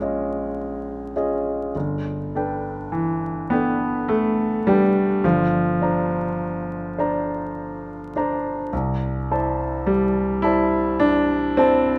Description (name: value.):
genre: classical, impressionist solo piano.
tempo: 52 BPM.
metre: 3/4.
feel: rubato.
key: unclear.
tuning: A4 = 439 Hz.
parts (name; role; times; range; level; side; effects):
clear grand piano; solo; 0.0-12.0 s; G1 to Bb5; -22 LUFS; equal; none.
room: moderate concert hall reverb, RT60 2.5 s.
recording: vinyl crackle.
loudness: -22 LUFS.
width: mono.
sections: 0.0-12.0 A section.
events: none.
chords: 0.0 Dbadd9/Bb; 1.7 Gadd9; 5.2 Bbadd9/G; 8.7 C69.